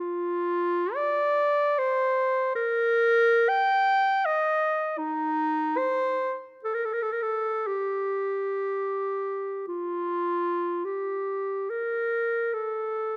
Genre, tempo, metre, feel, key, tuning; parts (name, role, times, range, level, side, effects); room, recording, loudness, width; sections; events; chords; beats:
classical, free, expressive piece for unaccompanied clarinet; 43-82 BPM; 3/4; rubato; G minor; A4 = 440 Hz
clear clarinet; solo; 0.0-13.2 s; Eb4 to G5; -26 LUFS; equal
moderate recital hall reverb, RT60 1.6 s; close, detailed microphones; -26 LUFS; mono
0.0-10.8 A section; 10.8-13.2 B section
0.95 1.76 | 2.55 3.48 4.24 | 4.99 5.78 6.65 | 7.64 8.67 9.67 | 10.82 11.70 12.53